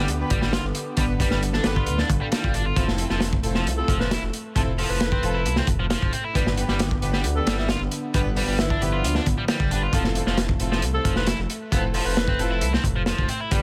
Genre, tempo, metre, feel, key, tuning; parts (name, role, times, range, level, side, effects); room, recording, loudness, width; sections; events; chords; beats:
breakbeat, breaks; 134 BPM; 4/4; straight; A4 = 440 Hz
phased analog pad; sustained chords; 0.0-13.6 s; D3 to A4; -35 LUFS; equal; phaser, chorus, sidechain pumping
overdriven electric guitar; riff; 0.0-13.6 s; F3 to F4; -32 LUFS; equal; vintage 12-bit sampler grit, delay
dark detuned saw bass; bass; 0.0-13.6 s; F1 to D2; -29 LUFS; equal
crunchy breakbeat drum kit; drums; 0.1-13.6 s; hi-hat, kick drum, snare drum; -26 LUFS; equal
warm studio string section; stabs; 0.2-13.6 s; B3 to B4; -34 LUFS; equal; delay
swell; sound effects; 2.1-2.8 s; -42 LUFS; equal
breathy alto saxophone; melody; 3.8-12.7 s; E4 to B4; -33 LUFS; equal; small speaker sound, delay
studio ambience; -23 LUFS; mono
0.0-13.6 A section
swell 2.1-2.8
0.0 G; 2.8 Fmaj7; 6.3 G; 9.9 Fmaj7
0.08 0.53 | 0.98 1.42 1.87 2.32 | 2.77 3.21 3.66 4.11 | 4.56 5.01 5.45 5.90 | 6.35 6.80 7.25 7.69 | 8.14 8.59 9.04 9.48 | 9.93 10.38 10.83 11.28 | 11.72 12.17 12.62 13.07 | 13.51